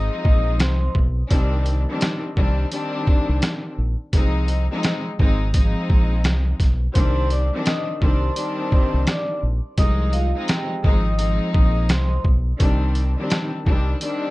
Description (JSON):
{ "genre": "hip hop, boom-bap hip-hop", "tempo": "85 BPM", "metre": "4/4", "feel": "swing 61% on 16ths", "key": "C minor", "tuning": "A4 = 440 Hz", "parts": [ { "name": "vibraphone with soft mallets", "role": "melody", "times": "0.0-0.9, 6.9-12.2 s", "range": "F4 to Eb6", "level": "-28 LUFS", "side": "left 1 dB", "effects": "high-pass filter, low-pass filter, tape echo" }, { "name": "warm chamber string section", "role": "accompaniment", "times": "0.0-14.3 s", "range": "Eb3 to Eb4", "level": "-25 LUFS", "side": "left 1 dB", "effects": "high-pass filter, low-pass filter" }, { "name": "deep dub fingered electric bass", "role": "bass", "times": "0.0-13.9 s", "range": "Ab1 to C2", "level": "-21 LUFS", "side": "equal", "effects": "none" }, { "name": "trip hop sampler-style drum kit", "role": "drums", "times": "0.2-14.2 s", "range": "hi-hat, kick drum, rim click, snare drum", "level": "-19 LUFS", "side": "equal", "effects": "none" } ], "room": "little or no reverb", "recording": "dark, warm production", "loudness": "-18 LUFS", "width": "side -20 dB against mid", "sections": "0.0-14.3 A section", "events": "none", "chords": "0.0 Fm7; 1.3 Cmadd9; 4.1 Fm7; 7.0 Cmadd9; 9.8 Fm7; 12.6 Cmadd9" }